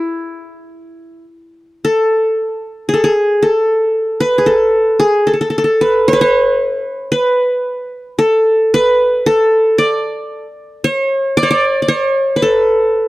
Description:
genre	arabic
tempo	113 BPM (eighths)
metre	10/8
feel	straight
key	A maqam suznak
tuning	A4 = 441 Hz
part	qanun	solo	0.0-13.1 s	E4 to D5	-12 LUFS	equal	none
room	light reverb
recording	dry, close 1970s-style studio recording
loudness	-11 LUFS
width	side -18 dB against mid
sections	0.0-13.1 A section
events	none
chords	none

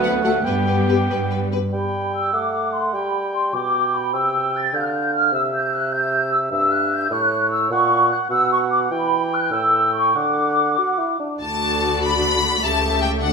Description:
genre	quick classical-period movement for symphony orchestra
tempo	99 BPM (dotted quarters)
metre	6/8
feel	straight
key	G major, D major from 6.5 s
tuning	A4 = 441 Hz
part	rich studio violin section	melody	0.0-1.6, 11.4-13.3 s	B4 to B5	-22 LUFS	left 5 dB	none
part	dark cor anglais	second line	0.0-11.2 s	C#5 to G5	-26 LUFS	right 2 dB	none
part	dark studio violin section	second line	0.0-1.5, 11.4-13.3 s	G4 to E5	-28 LUFS	left 3 dB	none
part	mellow hollow flute section	second line	0.0-11.2 s	G4 to A6	-20 LUFS	equal	none
part	mellow bassoon	accompaniment	0.0-11.4 s	G2 to F#4	-26 LUFS	right 1 dB	none
part	rich studio viola section	accompaniment	0.0-1.4, 11.4-13.3 s	F#3 to G4	-26 LUFS	left 1 dB	none
part	clear studio cello section	bass	0.0-1.5, 11.4-13.3 s	C#3 to B3	-31 LUFS	right 3 dB	none
part	clear studio double bass section	bass	0.0-1.7, 11.4-13.3 s	C#2 to G2	-24 LUFS	right 2 dB	none
part	dark French horn section	sustained chords	0.2-1.6 s	A3 to G4	-25 LUFS	left 6 dB	none
room	wet recital hall reverb, RT60 1.4 s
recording	none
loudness	-17 LUFS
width	side -5 dB against mid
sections	0.0-1.7 A section; 1.7-11.4 A section; 11.4-13.3 B section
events	none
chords	0.5 G; 1.7 N.C.; 2.3 D/A; 2.9 G; 4.1 C; 4.7 G5/D; 5.3 C; 6.5 Em/G; 7.1 A; 7.7 F#/A#; 8.3 B5; 8.9 Em; 9.5 A5; 10.2 D; 12.6 A7/C#

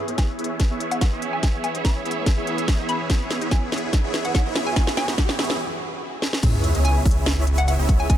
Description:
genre	future bass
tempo	144 BPM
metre	4/4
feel	half-time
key	C# minor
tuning	A4 = 439 Hz
part	felt-muted upright piano	accompaniment	0.0-6.2 s	B3 to G#4	-41 LUFS	left 5 dB	none
part	dark studio string section	sustained chords	0.0-6.4 s	E3 to B4	-37 LUFS	right 1 dB	sidechain pumping, low-pass filter
part	supersaw chords	riff	0.0-8.2 s	B3 to E5	-27 LUFS	right 2 dB	phaser, sidechain pumping, low-pass filter, dub echo
part	riser and sub drop	sound effects	0.0-8.1 s	none	-31 LUFS	equal	none
part	trap drum kit	drums	0.1-8.2 s	crash cymbal, hi-hat, snare drum	-27 LUFS	equal	none
part	hollow square pluck	melody	0.2-8.2 s	F#5 to B5	-30 LUFS	left 1 dB	chorus, sidechain pumping, dub echo
part	electronic kick drum	drums	0.2-8.2 s	none	-19 LUFS	equal	none
part	wide detuned saw bass	bass	6.4-8.2 s	C#2	-21 LUFS	equal	chorus, sidechain pumping
room	little or no reverb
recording	none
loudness	-20 LUFS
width	side -11 dB against mid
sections	0.0-6.4 A section; 6.4-8.2 B section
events	build-up 0.0-6.4; drum fill 0.0-5.6, 6.2; riser 0.0-5.6; filter sweep on synth pluck 0.0-6.4; break 5.6-6.4; drop 6.4-8.2; impact 6.4-8.1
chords	0.0 C#m7

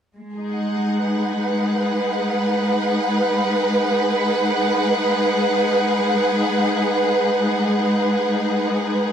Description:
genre	ambient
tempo	free time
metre	none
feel	none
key	G# minor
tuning	A4 = 440 Hz
part	warm symphonic string section	sustained chords	0.2-9.1 s	G#3 to F#5	-18 LUFS	equal	none
room	light reverb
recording	none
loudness	-17 LUFS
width	side -8 dB against mid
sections	0.2-9.1 A section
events	none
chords	0.2 G#m7

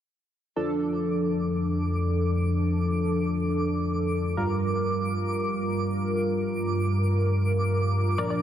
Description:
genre	house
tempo	free time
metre	none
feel	none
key	F major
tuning	A4 = 441 Hz
part	warm analog pad	sustained chords	0.6-8.4 s	F2 to Bb4	-29 LUFS	left 1 dB	chorus
part	chorused polysynth	stabs	0.6-8.4 s	G2 to Bb4	-26 LUFS	equal	dub echo
part	twinkling granular texture	texture	0.9-8.4 s	D6	-35 LUFS	right 1 dB	built-in reverb
part	tight sequenced synth	arpeggios	8.2-8.4 s	D5	-30 LUFS	left 4 dB	chorus, phaser
room	wet recital hall reverb, RT60 1.4 s, digital ambience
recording	none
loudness	-24 LUFS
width	side -10 dB against mid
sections	0.6-8.4 A section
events	filter sweep on analog synth pad 0.6-8.4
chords	0.6 F6; 4.4 Gm7

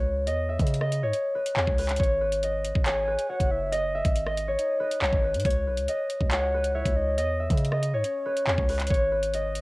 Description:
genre	hip hop, drill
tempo	139 BPM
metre	4/4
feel	half-time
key	unclear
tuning	A4 = 439 Hz
part	concert harp	melody	0.0-9.6 s	B4 to E5	-26 LUFS	equal	cassette tape
part	long sustained 808-style bass	bass	0.0-9.6 s	F#1 to C#3	-29 LUFS	equal	none
part	drill drum kit	drums	0.3-9.6 s	handclaps, hi-hat, kick drum, rim click	-27 LUFS	equal	cassette tape
part	soft octave-layered synth lead	second line	2.9-8.9 s	C#5 to G#5	-36 LUFS	right 1 dB	chorus, cassette tape, analog delay
room	light reverb, digital ambience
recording	home recording on cassette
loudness	-23 LUFS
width	side -22 dB against mid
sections	0.0-9.6 A section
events	none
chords	0.0 C#m7; 2.0 G#m; 5.5 C#m7; 8.9 G#m

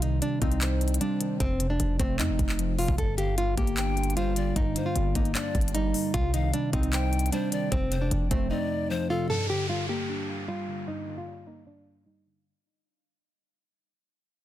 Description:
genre	hip hop, trap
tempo	152 BPM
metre	4/4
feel	half-time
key	G minor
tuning	A4 = 440 Hz
part	nylon-string guitar	melody	0.0-12.4 s	C4 to A4	-31 LUFS	equal	low-pass filter, ping-pong delay
part	warbly lo-fi synth keys	accompaniment	0.0-12.5 s	F2 to D5	-31 LUFS	right 1 dB	chorus, low-pass filter
part	hard-hitting 808-style bass	bass	0.0-8.5 s	F1 to F2	-28 LUFS	equal	none
part	trap drum kit	drums	0.0-8.4 s	handclaps, hi-hat, kick drum	-29 LUFS	equal	none
part	pan flute	second line	3.2-9.3 s	A4 to G5	-36 LUFS	left 5 dB	ping-pong delay
part	downlifter	sound effects	9.3-12.5 s	none	-36 LUFS	equal	none
room	digital ambience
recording	dense, heavily limited modern master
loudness	-25 LUFS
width	side -13 dB against mid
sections	0.0-9.3 A section; 9.3-12.5 B section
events	drums muted 8.5-9.3; fade-out 9.3-12.5; filter sweep 9.3-12.5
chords	0.0 Cm; 1.4 F; 3.0 Gm; 6.1 Cm; 7.7 F; 9.3 Gm

